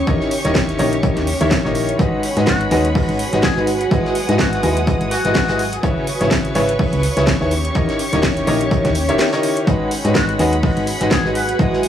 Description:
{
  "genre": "piano house",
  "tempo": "125 BPM",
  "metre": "4/4",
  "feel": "swing 56% on 16ths",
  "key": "G# minor",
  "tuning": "A4 = 440 Hz",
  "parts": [
    { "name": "warm chamber violin section", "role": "sustained chords", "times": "0.0-11.9 s", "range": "G4 to D#6", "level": "-26 LUFS", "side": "equal", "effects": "sidechain pumping" },
    { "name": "solid FM bass", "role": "bass", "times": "0.0-11.7 s", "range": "D#1 to G#2", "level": "-22 LUFS", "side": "equal", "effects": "sidechain pumping" },
    { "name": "granular cloud pad", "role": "texture", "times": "0.0-11.9 s", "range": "C#4 to D#6", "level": "-25 LUFS", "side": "right 1 dB", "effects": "built-in reverb, sidechain pumping" },
    { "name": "clear upright piano", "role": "riff", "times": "0.1-11.8 s", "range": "C#3 to E5", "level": "-20 LUFS", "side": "left 1 dB", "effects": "sidechain pumping, tape echo" },
    { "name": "electronic kick drum", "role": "drums", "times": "0.1-11.7 s", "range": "none", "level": "-20 LUFS", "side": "equal", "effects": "none" },
    { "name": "warm soul drum kit", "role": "drums", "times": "0.1-11.9 s", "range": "hi-hat, snare drum", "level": "-34 LUFS", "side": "left 1 dB", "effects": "none" },
    { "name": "house drum kit", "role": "drums", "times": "0.3-11.9 s", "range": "hi-hat, snare drum", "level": "-23 LUFS", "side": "equal", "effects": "none" },
    { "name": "trumpet with metal mute", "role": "melody", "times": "2.5-5.8, 10.2-11.6 s", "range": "F#4 to B4", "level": "-25 LUFS", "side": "left 2 dB", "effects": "tape echo" }
  ],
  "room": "small room ambience",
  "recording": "none",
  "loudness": "-15 LUFS",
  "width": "side -10 dB against mid",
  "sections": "0.0-11.9 A section",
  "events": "none",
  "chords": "0.0 D#7b9; 2.0 G#m7; 3.9 Emaj9/G#; 5.8 C#m7; 7.5 D#7b9; 9.7 G#m7",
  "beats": "| 0.07 0.55 1.03 1.51 | 1.99 2.47 2.95 3.43 | 3.91 4.39 4.87 5.35 | 5.83 6.31 6.79 7.27 | 7.75 8.23 8.71 9.19 | 9.67 10.15 10.63 11.11 | 11.59"
}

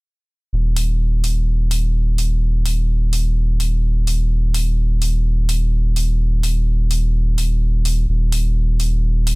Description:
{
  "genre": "progressive house",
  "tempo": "127 BPM",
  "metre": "4/4",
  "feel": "straight",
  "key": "unclear",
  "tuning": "A4 = 440 Hz",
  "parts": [
    { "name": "saturated sub bass", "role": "bass", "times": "0.5-9.4 s", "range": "Eb1", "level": "-16 LUFS", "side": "equal", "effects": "none" },
    { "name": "electronic hi-hat", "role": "drums", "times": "0.8-9.4 s", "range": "none", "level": "-26 LUFS", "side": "left 1 dB", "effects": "overdrive" }
  ],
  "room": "little or no reverb",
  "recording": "none",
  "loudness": "-16 LUFS",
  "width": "side -28 dB against mid",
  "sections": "0.5-9.4 A section",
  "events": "none",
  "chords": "none",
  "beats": "| 0.53 1.00 1.47 1.95 | 2.42 2.89 3.36 3.84 | 4.31 4.78 5.25 5.73 | 6.20 6.67 7.14 7.62 | 8.09 8.56 9.03"
}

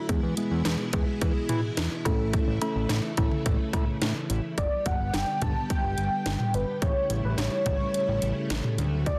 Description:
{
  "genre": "synth-pop",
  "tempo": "107 BPM",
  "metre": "4/4",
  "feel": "straight",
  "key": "unclear",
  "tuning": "A4 = 440 Hz",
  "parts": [
    { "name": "string machine, full ensemble", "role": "sustained chords", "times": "0.0-9.2 s", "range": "B2 to G4", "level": "-36 LUFS", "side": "equal", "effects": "ensemble chorus" },
    { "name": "muted felt-like synth keys", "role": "accompaniment", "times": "0.1-4.1 s", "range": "G#3 to A4", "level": "-34 LUFS", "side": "equal", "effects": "chorus" },
    { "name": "fat analog bass", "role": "bass", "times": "0.1-9.1 s", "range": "G1 to E3", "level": "-31 LUFS", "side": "equal", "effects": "none" },
    { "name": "house drum kit", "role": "drums", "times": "0.1-9.2 s", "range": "cowbell, hi-hat, kick drum, snare drum, toms", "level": "-31 LUFS", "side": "equal", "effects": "overdrive" },
    { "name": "warm velvety synth lead", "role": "melody", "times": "4.6-9.2 s", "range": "B4 to A5", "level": "-32 LUFS", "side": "equal", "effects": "chorus, tape echo" }
  ],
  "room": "moderate plate reverb, RT60 1.4 s, digital ambience",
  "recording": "dense, heavily limited modern master",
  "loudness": "-27 LUFS",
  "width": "mono",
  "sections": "0.0-4.6 A section; 4.6-9.2 B section",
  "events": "none",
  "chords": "0.1 E; 2.1 A; 4.6 G; 6.8 A7",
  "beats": "| 0.09 0.65 1.21 1.77 | 2.33 2.90 3.46 4.02 | 4.58 5.14 5.70 6.26 | 6.82 7.38 7.94 8.50 | 9.06"
}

